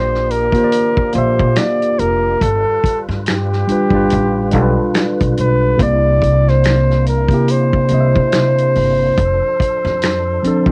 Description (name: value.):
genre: R&B, neo-soul.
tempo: 71 BPM.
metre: 4/4.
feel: swing 58% on 16ths.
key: unclear.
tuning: A4 = 445 Hz.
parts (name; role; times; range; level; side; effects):
warm flugelhorn; melody; 0.0-10.7 s; G4 to D5; -19 LUFS; equal; cassette tape.
tine electric piano; accompaniment; 0.0-10.7 s; C3 to E5; -19 LUFS; equal; phaser, cassette tape.
tonewheel organ; sustained chords; 0.0-10.7 s; C3 to B4; -31 LUFS; equal; none.
upright bass; bass; 0.0-10.7 s; F1 to C3; -21 LUFS; equal; none.
warm soul drum kit; drums; 0.1-10.7 s; finger snaps, hi-hat, kick drum, snare drum; -21 LUFS; equal; none.
room: little or no reverb.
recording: home recording on cassette.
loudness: -15 LUFS.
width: mono.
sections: 0.0-10.7 A section.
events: none.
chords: 0.0 Bb6; 2.4 G7; 5.8 C9; 9.2 F6.